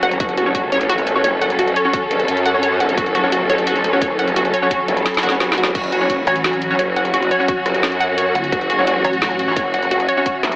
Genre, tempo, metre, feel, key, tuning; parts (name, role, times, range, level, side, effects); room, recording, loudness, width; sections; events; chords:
dark technical drum and bass; 173 BPM; 4/4; straight; F# minor; A4 = 438 Hz
warm symphonic string section; sustained chords; 0.0-10.6 s; F#3 to A4; -20 LUFS; equal; sidechain pumping
analog pluck; arpeggios; 0.0-10.3 s; F#4 to F#5; -20 LUFS; equal; chorus, sidechain pumping, digital delay
growl bass; bass; 0.0-10.6 s; F#1 to F#2; -21 LUFS; equal; chorus, overdrive, sidechain pumping
drum and bass drum kit; drums; 0.0-10.6 s; crash cymbal, hi-hat, rim click, snare drum; -23 LUFS; equal; overdrive, small room ambience
warbly tape-like pad; texture; 1.0-10.6 s; F#4 to B5; -29 LUFS; right 1 dB
electronic kick drum; drums; 0.2-10.3 s; -26 LUFS; equal; small room ambience
orchestra-hit-like synth stab; stabs; 0.5-10.3 s; C#4 to C#5; -23 LUFS; equal; built-in reverb, digital delay
pulsing pluck wobble bass; bass; 6.3-9.6 s; G1 to A1; -23 LUFS; equal; distortion, chorus, tube saturation
moderate lush hall reverb, RT60 1.7 s, digital ambience; AM radio sound; -14 LUFS; side -22 dB against mid
0.0-10.6 A section
drum fill 5.1-5.8
0.0 F#5